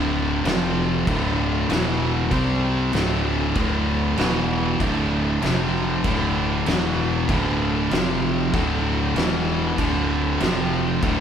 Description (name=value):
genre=stoner and doom metal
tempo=96 BPM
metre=4/4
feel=swing 58% on 8ths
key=D dorian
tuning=A4 = 435 Hz
part: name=distorted electric guitar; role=riff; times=0.0-11.2 s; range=D2 to C4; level=-26 LUFS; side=equal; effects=overdrive
part: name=thick fuzz guitar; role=riff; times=0.0-11.2 s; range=D2 to C4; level=-26 LUFS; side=left 8 dB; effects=distortion
part: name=thick fuzz guitar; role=riff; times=0.0-11.2 s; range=D2 to C4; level=-26 LUFS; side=right 7 dB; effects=distortion
part: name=growling fingered electric bass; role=bass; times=0.0-11.2 s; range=D1 to C2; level=-28 LUFS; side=equal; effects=overdrive
part: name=oversized low-tuned drum kit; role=drums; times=0.5-11.2 s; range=crash cymbal, kick drum, snare drum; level=-26 LUFS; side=equal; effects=none
room=moderate large studio reverb, RT60 0.8 s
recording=band playing live in one room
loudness=-19 LUFS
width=side -8 dB against mid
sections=0.0-11.2 A section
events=none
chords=0.5 F5; 1.1 D5; 1.7 E5; 2.3 C5; 2.9 D5; 4.2 E5; 4.8 D5; 5.4 F5; 6.0 D5; 6.7 E5; 7.3 D5; 7.9 F5; 8.5 D5; 9.2 E5; 9.8 D5; 10.4 F5